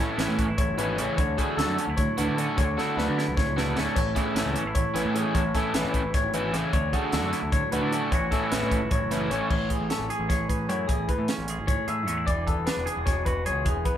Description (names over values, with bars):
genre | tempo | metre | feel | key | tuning
math rock and midwest emo | 303 BPM (eighths) | 7/8 | straight | A major | A4 = 440 Hz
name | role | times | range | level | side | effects
twangy electric guitar | accompaniment | 0.0-14.0 s | A2 to G#4 | -32 LUFS | right 4 dB | none
electric guitar through a small old amp | arpeggios | 0.0-14.0 s | G#4 to E5 | -30 LUFS | left 4 dB | none
crunchy overdriven guitar | riff | 0.0-9.5 s | D3 to F#4 | -29 LUFS | equal | spring reverb
crisp fusion drum kit | drums | 0.0-14.0 s | crash cymbal, hi-hat, kick drum, snare drum, splash cymbal | -28 LUFS | equal | none
growling picked electric bass | bass | 0.2-14.0 s | E1 to D3 | -31 LUFS | equal | overdrive
room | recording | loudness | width
moderate studio reverb, RT60 0.5 s | band playing live in one room | -23 LUFS | side -10 dB against mid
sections
0.0-9.5 A section; 9.5-14.0 B section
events
drum fill 2.8-4.0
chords
0.0 Amaj9; 1.2 Dmaj9; 4.0 Amaj9; 6.7 Dmaj9; 8.1 A69; 9.5 Amaj7; 12.3 E7